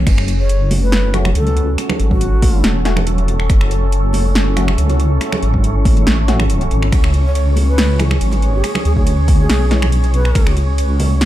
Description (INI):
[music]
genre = deep dubstep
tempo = 140 BPM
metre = 4/4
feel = swing 53% on 16ths, half-time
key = F# minor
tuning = A4 = 441 Hz
[part]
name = deep dark ambient pad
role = sustained chords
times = 0.0-11.3 s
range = C#4 to C#5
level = -24 LUFS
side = right 1 dB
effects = chorus, built-in reverb
[part]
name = deep soft wobble bass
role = bass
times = 0.0-11.3 s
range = E1 to D2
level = -15 LUFS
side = equal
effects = chorus
[part]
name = deep house drum kit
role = drums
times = 0.1-11.3 s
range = crash cymbal, finger snaps, hi-hat, ride cymbal, snare drum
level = -21 LUFS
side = equal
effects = overdrive
[part]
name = electronic kick drum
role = drums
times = 0.1-10.4 s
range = none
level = -14 LUFS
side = equal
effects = overdrive
[part]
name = congas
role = percussion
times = 0.1-11.1 s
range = none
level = -24 LUFS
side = right 1 dB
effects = dub echo
[part]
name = wind-like tuned noise texture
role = texture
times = 0.8-11.3 s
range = C#4 to C#5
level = -28 LUFS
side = left 1 dB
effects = built-in reverb
[part]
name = breathy bright long shakuhachi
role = melody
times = 0.4-2.7, 7.3-10.6 s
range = F#4 to C#5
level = -26 LUFS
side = left 1 dB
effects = dub echo
[part]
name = percussive organ stab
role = stabs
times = 1.1-9.9 s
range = E3 to F#4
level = -28 LUFS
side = left 3 dB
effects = ensemble chorus, dub echo
[sound]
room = digital ambience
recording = dark, warm production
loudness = -12 LUFS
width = side -14 dB against mid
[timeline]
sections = 0.0-11.3 A section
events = none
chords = 0.1 F#m; 6.9 C#m